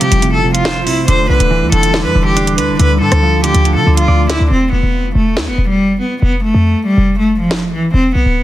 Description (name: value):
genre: hip hop, drill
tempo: 140 BPM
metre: 4/4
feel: half-time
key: E phrygian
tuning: A4 = 440 Hz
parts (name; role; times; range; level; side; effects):
- rich cello; melody; 0.0-8.4 s; E3 to C5; -15 LUFS; equal; none
- semi-hollow electric guitar; accompaniment; 0.0-4.5 s; C3 to D5; -17 LUFS; right 3 dB; spring reverb
- ethereal airy pad; sustained chords; 0.0-4.5 s; C3 to F4; -21 LUFS; left 1 dB; ensemble chorus, built-in reverb
- drill drum kit; drums; 0.0-7.6 s; hi-hat, rim click, snare drum; -19 LUFS; right 1 dB; none
- short 808-style bass; bass; 0.1-8.4 s; D1 to D3; -14 LUFS; equal; none
room: digital ambience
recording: dense, heavily limited modern master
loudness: -10 LUFS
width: side -14 dB against mid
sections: 0.0-4.5 A section; 4.5-8.4 B section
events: drum fill 4.1-4.5; hi-hats muted 4.5-8.4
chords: 0.0 F; 1.1 Em7; 2.8 Dm; 4.5 E5; 6.2 F